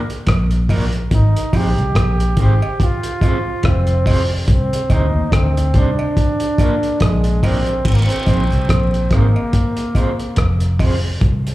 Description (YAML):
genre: roots reggae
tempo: 71 BPM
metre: 4/4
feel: swing 58% on 16ths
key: unclear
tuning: A4 = 443 Hz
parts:
  - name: cloth-damped thuddy drum kit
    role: drums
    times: 0.1-11.5 s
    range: crash cymbal, hi-hat, kick drum, rim click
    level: -19 LUFS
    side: equal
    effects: none
  - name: vintage muted fingered electric bass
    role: bass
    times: 0.3-11.4 s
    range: F1 to Eb2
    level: -15 LUFS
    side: equal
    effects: none
  - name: electric guitar at the edge of break-up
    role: accompaniment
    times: 0.7-11.1 s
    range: Bb3 to C5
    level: -27 LUFS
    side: right 3 dB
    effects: tremolo, tape echo, slapback echo
  - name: cowbell and jawbone-type rattle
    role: percussion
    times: 0.7-11.0 s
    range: none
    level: -33 LUFS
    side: right 3 dB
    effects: slapback echo
  - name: bright trombone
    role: melody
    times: 1.1-10.4 s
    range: Ab3 to G4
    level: -22 LUFS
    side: equal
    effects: tape echo, slapback echo
room: small room ambience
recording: live gig heard through the venue's PA, club reverb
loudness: -14 LUFS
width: side -16 dB against mid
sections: 0.0-7.8 A section; 7.8-11.5 B section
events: none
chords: 0.0 Bb; 1.1 Ab; 2.8 Fm; 4.5 Cm; 6.2 Bb; 7.8 Ab; 9.5 Fm